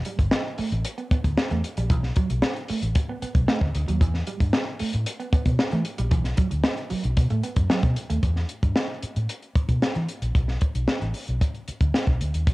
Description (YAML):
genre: funk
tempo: 114 BPM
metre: 4/4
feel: straight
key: unclear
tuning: A4 = 441 Hz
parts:
  - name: electric guitar at the edge of break-up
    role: riff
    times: 0.1-8.2 s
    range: E3 to B3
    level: -31 LUFS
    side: right 4 dB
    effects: cassette tape
  - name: compact cocktail drum kit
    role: drums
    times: 0.1-12.5 s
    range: hi-hat, kick drum, snare drum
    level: -23 LUFS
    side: equal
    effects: cassette tape
  - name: vintage muted fingered electric bass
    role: bass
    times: 0.2-12.5 s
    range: E1 to E3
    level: -25 LUFS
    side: equal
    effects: none
room: small room ambience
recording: home recording on cassette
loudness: -22 LUFS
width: side -20 dB against mid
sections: 0.0-8.2 A section; 8.2-12.5 B section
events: none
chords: 0.0 Em7 (rootless); 1.9 B7(no3); 4.0 Emadd11; 6.1 B7(no3); 8.2 Emadd11; 10.3 Bm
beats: 0.32 0.85 1.38 | 1.90 2.43 2.96 3.48 | 4.01 4.54 5.06 5.59 | 6.12 6.65 7.17 7.70 | 8.23 8.76 9.29 9.82 | 10.35 10.88 11.41 11.94 | 12.47